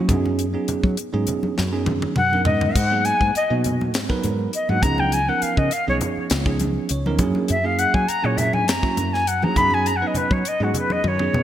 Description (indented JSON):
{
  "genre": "electric jazz fusion",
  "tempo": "101 BPM",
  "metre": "4/4",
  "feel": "straight",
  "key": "unclear",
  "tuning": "A4 = 439 Hz",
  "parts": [
    { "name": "bell-like tine electric piano", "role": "accompaniment", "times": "0.0-11.4 s", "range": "E#3 to C#5", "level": "-25 LUFS", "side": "right 5 dB", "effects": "none" },
    { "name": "woody fretless electric bass", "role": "bass", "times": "0.0-11.4 s", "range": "B1 to F#3", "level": "-23 LUFS", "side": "equal", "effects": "wide subtle chorus" },
    { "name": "tight funk drum kit", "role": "drums", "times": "0.1-11.3 s", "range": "hi-hat, kick drum, snare drum, splash cymbal, toms", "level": "-24 LUFS", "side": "left 1 dB", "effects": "gated reverb" },
    { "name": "congas", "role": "percussion", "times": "0.1-11.4 s", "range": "none", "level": "-29 LUFS", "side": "left 2 dB", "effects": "none" },
    { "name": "jazz flute", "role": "melody", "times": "2.2-11.4 s", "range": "F#4 to B5", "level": "-21 LUFS", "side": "left 2 dB", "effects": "none" }
  ],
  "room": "moderate lush hall reverb, RT60 1.9 s",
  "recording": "bright 1980s-style digital production",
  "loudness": "-18 LUFS",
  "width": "side -11 dB against mid",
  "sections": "0.0-11.4 A section",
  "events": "flute solo 0.0-11.4; drum fill 1.6-2.8, 11.0-11.4; tine electric piano fill 6.6-7.5",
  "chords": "0.1 B69/F#; 2.8 G#m9; 4.8 C#9; 7.2 F#9; 9.6 B69/F#",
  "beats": "| 0.39 0.98 1.57 2.16 | 2.75 3.35 3.94 4.53 | 5.12 5.71 6.31 6.90 | 7.49 8.08 8.67 9.27 | 9.86 10.45 11.04"
}